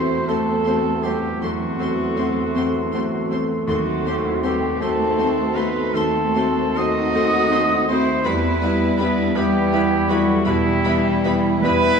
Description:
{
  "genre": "classical, romantic movement for piano and orchestra",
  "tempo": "53 BPM (dotted quarters)",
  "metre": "12/8",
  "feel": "rubato",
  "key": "unclear",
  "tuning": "A4 = 440 Hz",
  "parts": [
    { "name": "clear grand piano", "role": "melody", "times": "0.0-12.0 s", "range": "D#2 to F#4", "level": "-22 LUFS", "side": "left 3 dB", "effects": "none" },
    { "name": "mellow clarinet", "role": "second line", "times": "0.0-12.0 s", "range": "E4 to F#4", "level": "-32 LUFS", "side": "right 1 dB", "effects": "none" },
    { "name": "mellow hollow silver concert flute", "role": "second line", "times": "0.0-12.0 s", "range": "E5 to D#6", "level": "-30 LUFS", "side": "equal", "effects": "none" },
    { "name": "rich symphonic violin section", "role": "second line", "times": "0.0-12.0 s", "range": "G3 to F#4", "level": "-30 LUFS", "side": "left 1 dB", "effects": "none" },
    { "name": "warm oboe", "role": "second line", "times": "0.0-12.0 s", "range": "B5 to C6", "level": "-32 LUFS", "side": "right 3 dB", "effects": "none" },
    { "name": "dark bassoon", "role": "accompaniment", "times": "0.0-12.0 s", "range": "G3 to A3", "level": "-30 LUFS", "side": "equal", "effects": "none" },
    { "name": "mellow French horn section", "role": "sustained chords", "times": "0.0-12.0 s", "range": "B3 to F#4", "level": "-30 LUFS", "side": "left 2 dB", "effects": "none" },
    { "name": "warm trombone section", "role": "sustained chords", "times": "0.0-12.0 s", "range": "D#3 to A3", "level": "-31 LUFS", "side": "right 2 dB", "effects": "none" },
    { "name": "warm trumpet", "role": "stabs", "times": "0.0-12.0 s", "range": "E4 to D#5", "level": "-24 LUFS", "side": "right 2 dB", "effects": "none" },
    { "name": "dark symphonic cello section", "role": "bass", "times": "0.0-12.0 s", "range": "E3 to D#4", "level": "-30 LUFS", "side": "right 5 dB", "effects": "none" },
    { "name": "rich studio double bass section", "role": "bass", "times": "0.0-12.0 s", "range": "D#2 to E2", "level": "-29 LUFS", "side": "right 3 dB", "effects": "none" },
    { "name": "clear symphonic violin section", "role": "melody", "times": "0.3-11.7 s", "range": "B5 to C6", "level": "-37 LUFS", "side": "left 2 dB", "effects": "none" },
    { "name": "rich symphonic viola section", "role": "accompaniment", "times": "0.3-11.7 s", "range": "G3 to B4", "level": "-32 LUFS", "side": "right 1 dB", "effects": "none" }
  ],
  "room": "wet recital hall reverb, RT60 1.9 s",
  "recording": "recorded in a church or concert hall",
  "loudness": "-17 LUFS",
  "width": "side -6 dB against mid",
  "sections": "0.0-12.0 A section",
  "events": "none",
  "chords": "0.0 F#m7b5/E; 3.7 D#dim7; 8.3 Em"
}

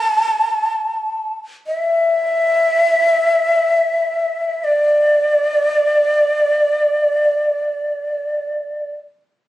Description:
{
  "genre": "japanese traditional, Japanese chamber music",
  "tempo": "free time",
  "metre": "none",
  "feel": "none",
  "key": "unclear",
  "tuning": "A4 = 440 Hz",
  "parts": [
    { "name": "breathy shakuhachi", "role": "solo", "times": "0.0-8.9 s", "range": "D5 to A5", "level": "-15 LUFS", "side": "equal", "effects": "none" }
  ],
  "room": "light reverb",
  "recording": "recorded on a phone in the room, club ambience",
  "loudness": "-14 LUFS",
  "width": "side -14 dB against mid",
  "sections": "0.0-9.5 A section",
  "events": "none",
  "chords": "none"
}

